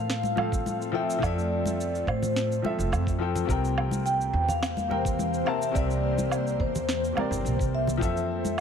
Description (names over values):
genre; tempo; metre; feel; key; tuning
sunset chillout; 106 BPM; 4/4; straight; F major; A4 = 440 Hz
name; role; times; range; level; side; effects
vibraphone with medium mallets; melody; 0.0-8.6 s; C5 to G5; -31 LUFS; left 1 dB; ping-pong delay
clear grand piano; accompaniment; 0.0-8.6 s; C3 to A5; -31 LUFS; moving between left 8 dB and right 3 dB; auto-pan, ping-pong delay
ethereal airy pad; sustained chords; 0.0-8.6 s; E3 to F5; -33 LUFS; equal; ensemble chorus, built-in reverb, tremolo
upright bass; bass; 0.0-8.6 s; F1 to A2; -30 LUFS; right 2 dB; none
electronic snare drum, shaker and woodblock; drums; 0.1-8.6 s; none; -33 LUFS; right 3 dB; none
congas; percussion; 0.2-8.6 s; none; -35 LUFS; left 3 dB; none
electronic kick drum; drums; 0.5-8.1 s; none; -30 LUFS; right 1 dB; none
room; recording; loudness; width
light reverb, small room ambience; none; -24 LUFS; side -7 dB against mid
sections
0.0-8.6 A section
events
none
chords
0.0 Fmaj7; 3.5 C7; 8.0 Fmaj7